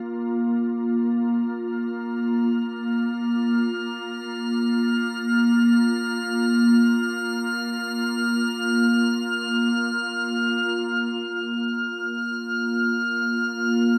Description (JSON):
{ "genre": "ambient", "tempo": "free time", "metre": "none", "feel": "none", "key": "unclear", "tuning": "A4 = 444 Hz", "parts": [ { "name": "organ-like drone", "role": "drone", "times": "0.0-14.0 s", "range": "Bb3 to F4", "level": "-24 LUFS", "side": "equal", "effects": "ensemble chorus, built-in reverb" }, { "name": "drifting glass-harmonics texture", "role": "texture", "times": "1.8-14.0 s", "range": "F6", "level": "-29 LUFS", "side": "equal", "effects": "chorus, built-in reverb" } ], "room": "wet spring reverb, RT60 2.7 s", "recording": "none", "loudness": "-23 LUFS", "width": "mono", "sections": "0.0-10.7 A section; 10.7-14.0 B section", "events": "fade-in on synth texture 0.0-10.7", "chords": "0.0 Bb5" }